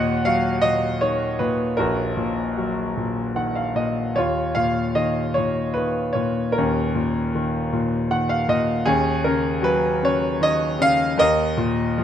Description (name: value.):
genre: classical, lyrical solo piano.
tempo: 51 BPM (dotted quarters).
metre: 6/8.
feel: rubato.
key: Eb minor.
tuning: A4 = 439 Hz.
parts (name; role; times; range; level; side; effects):
clear concert grand piano; solo; 0.0-12.0 s; Bb1 to Gb5; -19 LUFS; equal; none.
room: light reverb.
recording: close, detailed microphones.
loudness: -19 LUFS.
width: side -9 dB against mid.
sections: 0.0-12.0 A section.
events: grand piano fill 3.0-4.2, 7.7-8.9.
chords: 0.0 Ebm7; 4.2 Bbm/Eb; 8.9 Dbsus4/Eb; 11.2 Eb5.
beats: 0.63 | 1.79 2.96 | 4.16 5.37 | 6.56 7.72 | 8.85 10.01 | 11.19.